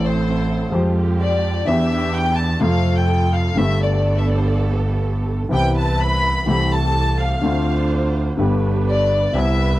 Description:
tango; 126 BPM; 4/4; rubato; A4 = 441 Hz
warm chamber violin section; second line; 0.0-9.8 s; C5 to B5; -22 LUFS; left 2 dB
warm baby grand piano; accompaniment; 0.0-9.8 s; G1 to A4; -20 LUFS; left 1 dB
warm symphonic string section; stabs; 0.0-9.8 s; Ab3 to C5; -28 LUFS; right 5 dB
rich double bass; bass; 0.0-9.8 s; G1 to F2; -20 LUFS; right 1 dB
little or no reverb; dry, close 1970s-style studio recording; -16 LUFS; side -16 dB against mid
0.0-9.8 A section
violin section solo 0.0-9.8
0.0 Am; 0.7 Fmadd9; 1.7 Em7; 2.6 F; 3.6 Gadd9; 5.5 Cmaj7; 6.5 Am7/C; 7.4 Dm7; 8.4 G
0.25 0.73 1.20 | 1.68 2.15 2.62 3.10 | 3.58 4.05 4.54 5.03 | 5.51 6.00 6.48 6.96 | 7.44 7.91 8.39 8.87 | 9.35

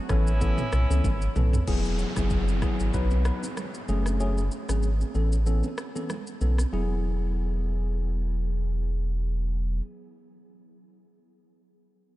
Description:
afrobeats; 95 BPM; 4/4; swing 55% on 16ths; E major; A4 = 439 Hz
warm horn section; second line; 0.1-1.3 s; B3 to E4; -37 LUFS; equal; analog delay
tine electric piano; accompaniment; 0.1-9.8 s; E3 to B4; -32 LUFS; left 3 dB; lush chorus
warm sub bass; bass; 0.1-9.8 s; E1 to C#2; -25 LUFS; equal
deep house drum kit; drums; 0.1-6.7 s; crash cymbal, kick drum, rim click, shaker, toms; -31 LUFS; equal
congas; percussion; 0.6-7.0 s; -40 LUFS; right 9 dB
downlifter; sound effects; 1.7-6.7 s; -41 LUFS; right 1 dB
light reverb; nothing above 10.9 kHz; -24 LUFS; side -16 dB against mid
0.0-1.7 A section; 1.7-6.7 B section; 6.7-9.3 C section
drum fill 1.0-1.7; kick muted 5.5-6.7
0.1 Aadd9; 1.7 Eadd9; 2.9 B; 3.9 F#madd9; 5.1 Aadd9; 6.7 Eadd9
0.41 1.04 | 1.68 2.31 2.94 3.57 | 4.20 4.83 5.46 6.10 | 6.73 7.36 7.99 8.62

